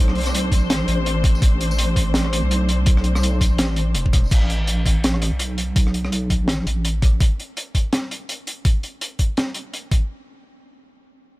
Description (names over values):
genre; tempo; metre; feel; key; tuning
half-time drum and bass; 166 BPM; 4/4; swing 58% on 16ths, half-time; A minor; A4 = 442 Hz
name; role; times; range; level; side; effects
muted studio string section; sustained chords; 0.0-4.3 s; A3 to C5; -28 LUFS; left 2 dB; sidechain pumping
deep soft wobble bass; bass; 0.0-7.2 s; E1 to B1; -21 LUFS; equal; chorus
crunchy breakbeat drum kit; drums; 0.1-10.0 s; crash cymbal, hi-hat, rim click, snare drum, tambourine; -24 LUFS; equal; none
electronic kick drum; drums; 0.5-10.0 s; none; -17 LUFS; equal; none
room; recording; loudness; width
small room reverb; none; -18 LUFS; side -19 dB against mid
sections
0.0-4.3 A section; 4.3-10.1 B section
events
drop 0.0-4.3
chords
0.0 Amadd9; 4.3 Asus2